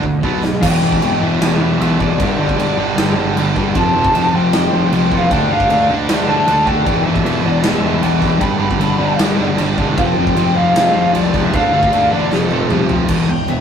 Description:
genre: hard rock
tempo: 154 BPM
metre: 4/4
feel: straight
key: E phrygian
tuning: A4 = 441 Hz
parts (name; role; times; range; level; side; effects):
- lead guitar through a small cranked amp; melody; 0.0-13.6 s; A4 to B5; -18 LUFS; left 1 dB; overdrive
- distorted electric guitar; riff; 0.0-13.6 s; E2 to D4; -19 LUFS; right 6 dB; overdrive
- overdriven semi-hollow guitar; riff; 0.0-13.6 s; E2 to D4; -18 LUFS; left 4 dB; none
- fuzz picked electric bass; bass; 0.0-13.6 s; E1 to E2; -24 LUFS; equal; overdrive
- big rock drum kit; drums; 0.0-13.6 s; crash cymbal, kick drum, snare drum, toms; -20 LUFS; equal; none
room: moderate studio reverb, RT60 0.6 s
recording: rough rehearsal-room recording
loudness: -12 LUFS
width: side -8 dB against mid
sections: 0.6-13.1 A section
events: drum fill 0.0-0.6, 12.3-13.1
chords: 0.2 B5; 0.6 Em; 2.2 G5; 3.7 F; 5.3 Dm; 6.9 Em; 8.4 G; 10.0 F5; 11.5 Dm; 12.3 F; 13.1 E5

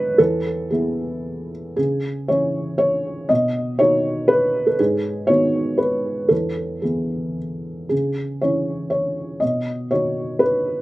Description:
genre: neoclassical minimalist piano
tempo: 110-124 BPM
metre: 3/4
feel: rubato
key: C# minor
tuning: A4 = 440 Hz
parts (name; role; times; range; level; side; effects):
- felt-muted upright piano; solo; 0.0-10.8 s; E2 to D#5; -18 LUFS; equal; none
room: little or no reverb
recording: recorded outdoors, with no room sound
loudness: -18 LUFS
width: side -18 dB against mid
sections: 0.0-7.9 A section; 7.9-10.8 B section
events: none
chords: 0.2 E; 1.8 C#m; 3.3 B; 4.8 G#m7; 6.3 E; 7.9 C#m; 9.4 B

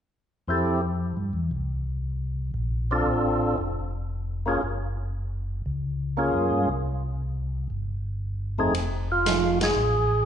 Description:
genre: soul jazz organ trio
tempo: 116 BPM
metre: 4/4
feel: swing 68% on 8ths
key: F major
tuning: A4 = 441 Hz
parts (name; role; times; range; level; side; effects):
- percussive tonewheel organ; melody; 0.5-10.3 s; F2 to A4; -24 LUFS; equal; slow rotary speaker
- mellow tonewheel organ; bass; 0.5-10.3 s; F1 to G2; -28 LUFS; equal; chorus vibrato, slow rotary speaker
- vintage drum kit; drums; 8.7-9.7 s; hi-hat, ride cymbal, snare drum; -29 LUFS; equal; none
- hollow-body jazz guitar; accompaniment; 9.3-9.6 s; F3 to G#4; -29 LUFS; right 8 dB; none
room: moderate recital hall reverb, RT60 1.6 s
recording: recorded in a church or concert hall, nothing above 10.4 kHz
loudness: -24 LUFS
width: side -9 dB against mid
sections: 0.5-8.7 A section; 8.7-10.3 B section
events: band accent 9.5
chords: 0.5 Fmaj9; 2.6 Bbmaj9; 4.6 Gbmaj9; 6.7 C5; 8.7 F7#9

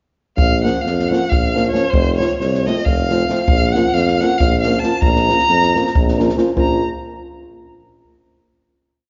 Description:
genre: balkan folk, Balkan wedding band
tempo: 272 BPM (eighths)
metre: 7/8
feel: straight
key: Bb harmonic minor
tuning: A4 = 438 Hz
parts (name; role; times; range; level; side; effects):
- rich violin; melody; 0.4-6.8 s; C5 to Bb5; -22 LUFS; equal; none
- warm tuba; bass; 0.4-6.8 s; F1 to F2; -22 LUFS; equal; none
- open jazz drum kit; percussion; 0.4-6.8 s; kick drum, snare drum; -22 LUFS; equal; none
- flamenco guitar; accompaniment; 0.6-6.8 s; F3 to F4; -23 LUFS; equal; none
room: moderate concert hall reverb, RT60 2.2 s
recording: recorded in a church or concert hall, nothing above 7.5 kHz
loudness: -16 LUFS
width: mono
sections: 0.4-6.6 A section; 6.6-8.1 final chord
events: none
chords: 0.4 Bbm; 1.9 F; 3.5 Bbm

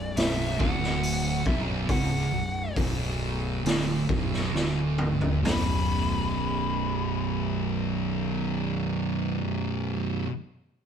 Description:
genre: stoner and doom metal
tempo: 65-71 BPM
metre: 4/4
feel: straight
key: B minor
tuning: A4 = 440 Hz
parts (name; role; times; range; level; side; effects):
- fuzz lead guitar; melody; 0.0-9.9 s; D5 to B5; -32 LUFS; left 4 dB; distortion
- thick fuzz guitar; riff; 0.0-10.3 s; B1 to B2; -32 LUFS; left 7 dB; distortion
- thick fuzz guitar; riff; 0.0-10.3 s; B1 to B2; -29 LUFS; right 7 dB; distortion
- fuzz fingered electric bass; bass; 0.0-10.2 s; B0 to D1; -34 LUFS; left 1 dB; overdrive
- raw garage drum kit; drums; 0.2-5.7 s; hi-hat, kick drum, snare drum, toms; -28 LUFS; left 1 dB; none
room: moderate stone room reverb, RT60 0.9 s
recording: band playing live in one room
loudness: -25 LUFS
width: side -8 dB against mid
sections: 0.0-5.5 A section; 5.5-9.1 B section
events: slowing down 0.0-5.5; drum fill 4.5-5.5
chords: 0.0 Bm; 5.5 B5

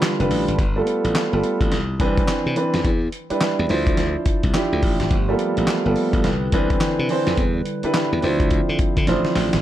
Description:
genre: R&B, new jack swing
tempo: 106 BPM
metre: 4/4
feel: swing 62% on 16ths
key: unclear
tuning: A4 = 440 Hz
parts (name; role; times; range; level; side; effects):
- warm concert grand piano; accompaniment; 0.0-9.6 s; E3 to C5; -22 LUFS; right 2 dB; none
- pipe organ, stopped flute; sustained chords; 0.0-0.6, 5.1-9.6 s; D3 to B4; -26 LUFS; equal; none
- dusty soul sampler-style drum kit; drums; 0.0-9.6 s; handclaps, hi-hat, kick drum, snare drum; -22 LUFS; equal; none
- glassy slap bass; bass; 0.2-9.6 s; F1 to D3; -23 LUFS; left 1 dB; none
room: digital ambience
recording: none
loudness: -18 LUFS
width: side -12 dB against mid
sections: 0.6-9.6 A section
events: break 0.0-0.6; drum fill 9.1-9.6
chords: 0.0 G7; 0.6 G9; 1.7 Cmaj9; 2.9 Em7; 3.7 Dm9; 5.1 G9; 6.2 Cmaj9; 7.4 Em7; 8.2 Dm9

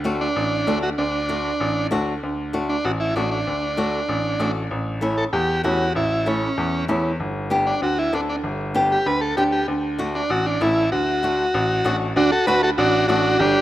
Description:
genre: latin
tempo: 193 BPM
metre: 4/4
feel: straight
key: D major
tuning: A4 = 440 Hz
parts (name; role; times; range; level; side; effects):
- flamenco guitar; accompaniment; 0.0-13.3 s; A3 to A4; -25 LUFS; left 1 dB; none
- clear grand piano; bass; 0.0-13.5 s; G1 to E2; -25 LUFS; equal; none
- combo organ; melody; 0.2-13.6 s; C#4 to B4; -21 LUFS; right 1 dB; none
room: light reverb, small room ambience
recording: rough home demo mix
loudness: -19 LUFS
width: side -14 dB against mid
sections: 0.0-2.2 A section; 2.2-12.2 B section; 12.2-13.6 C section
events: none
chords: 0.0 D; 4.7 A7; 7.2 G; 9.7 D

